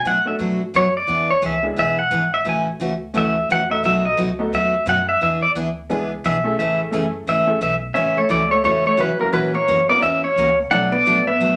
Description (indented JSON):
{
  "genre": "country",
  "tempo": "174 BPM",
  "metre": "4/4",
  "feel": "swing 62% on 8ths",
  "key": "A major",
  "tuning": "A4 = 438 Hz",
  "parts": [
    { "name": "pedal steel guitar", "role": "melody", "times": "0.0-11.6 s", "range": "Bb4 to G#5", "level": "-20 LUFS", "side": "equal", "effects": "none" },
    { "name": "upright bass", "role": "bass", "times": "0.0-11.6 s", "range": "F#1 to A#2", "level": "-37 LUFS", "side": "equal", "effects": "none" },
    { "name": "picked steel-string acoustic guitar", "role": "accompaniment", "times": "0.1-11.6 s", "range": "B2 to A#4", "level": "-26 LUFS", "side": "equal", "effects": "none" },
    { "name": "honky-tonk upright piano", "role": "accompaniment", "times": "0.3-11.6 s", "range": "G#3 to Bb4", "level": "-29 LUFS", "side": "equal", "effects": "none" },
    { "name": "vintage hollow-body jazz guitar", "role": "second line", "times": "7.9-11.6 s", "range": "F#3 to D4", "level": "-26 LUFS", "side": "equal", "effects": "none" }
  ],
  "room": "wet studio reverb, RT60 0.6 s",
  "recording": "none",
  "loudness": "-19 LUFS",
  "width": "mono",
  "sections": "0.0-8.0 A section; 8.0-11.6 B section",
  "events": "pedal steel guitar solo 0.0-8.0",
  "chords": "0.0 Bm7; 1.1 E7; 2.5 A6; 3.8 B7; 5.2 E7; 6.6 Amaj7; 8.0 A6; 9.3 F#7; 10.7 Bm7"
}